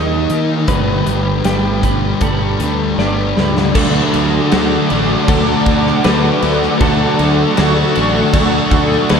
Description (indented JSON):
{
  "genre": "rock, shoegaze and dream pop",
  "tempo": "78 BPM",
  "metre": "4/4",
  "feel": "straight",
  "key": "unclear",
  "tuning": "A4 = 444 Hz",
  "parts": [
    { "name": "direct-recorded clean electric guitar", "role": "arpeggios", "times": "0.0-9.2 s", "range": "F#4 to Eb5", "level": "-23 LUFS", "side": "left 6 dB", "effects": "analog chorus, tape echo" },
    { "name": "thick fuzz guitar", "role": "riff", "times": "0.0-9.2 s", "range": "G2 to Eb4", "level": "-18 LUFS", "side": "left 7 dB", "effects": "distortion, analog chorus" },
    { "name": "twelve-string electric guitar", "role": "riff", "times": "0.0-9.2 s", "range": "D3 to B4", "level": "-19 LUFS", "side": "right 7 dB", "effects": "reverse reverb" },
    { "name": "growling fingered electric bass", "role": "bass", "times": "0.0-9.2 s", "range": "G1 to Eb3", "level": "-19 LUFS", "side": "equal", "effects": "overdrive" },
    { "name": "big rock drum kit", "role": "drums", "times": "0.3-9.2 s", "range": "crash cymbal, hi-hat, kick drum, snare drum", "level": "-19 LUFS", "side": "right 1 dB", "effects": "none" },
    { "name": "sludgy distorted guitar", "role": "riff", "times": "3.7-9.2 s", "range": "D3 to D4", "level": "-20 LUFS", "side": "equal", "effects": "overdrive" },
    { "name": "hollow soft pad", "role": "sustained chords", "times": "4.2-9.2 s", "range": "A4 to D6", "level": "-20 LUFS", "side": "equal", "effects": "ensemble chorus" }
  ],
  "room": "wet lush hall reverb, RT60 2.4 s",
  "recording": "dreamy mix soaked in reverb",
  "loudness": "-12 LUFS",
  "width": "side -6 dB against mid",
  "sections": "0.0-3.8 A section; 3.8-9.2 B section",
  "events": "drum fill 3.0-3.8",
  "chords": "0.0 Eb; 0.7 Gadd9; 3.8 D",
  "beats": "| 0.69 1.45 2.22 2.99 | 3.75 4.52 5.28 6.05 | 6.81 7.57 8.34 9.10"
}